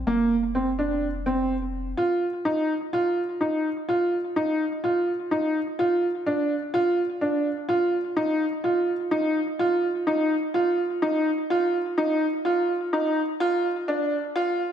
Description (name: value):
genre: piano and strings electronica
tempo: 126 BPM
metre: 4/4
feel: straight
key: unclear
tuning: A4 = 440 Hz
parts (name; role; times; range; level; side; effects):
- round analog bass; bass; 0.0-1.9 s; F1; -34 LUFS; left 2 dB; none
- clear upright piano; riff; 0.1-14.6 s; Bb3 to F4; -22 LUFS; right 1 dB; tape echo
room: wet scoring stage reverb, RT60 1.8 s, studio reverb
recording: high-pass filter, low-pass filter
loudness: -22 LUFS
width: side -9 dB against mid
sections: 0.0-2.0 A section; 2.0-14.7 B section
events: build-up 2.0-14.7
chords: 0.1 F5; 2.0 Ebsus2; 5.8 Dm; 7.7 Ebsus2; 13.4 Dm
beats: | 0.07 0.55 1.02 1.50 | 1.97 2.45 2.93 3.40 | 3.88 4.35 4.83 5.31 | 5.78 6.26 6.74 7.21 | 7.69 8.16 8.64 9.12 | 9.59 10.07 10.54 11.02 | 11.50 11.97 12.45 12.93 | 13.40 13.88 14.35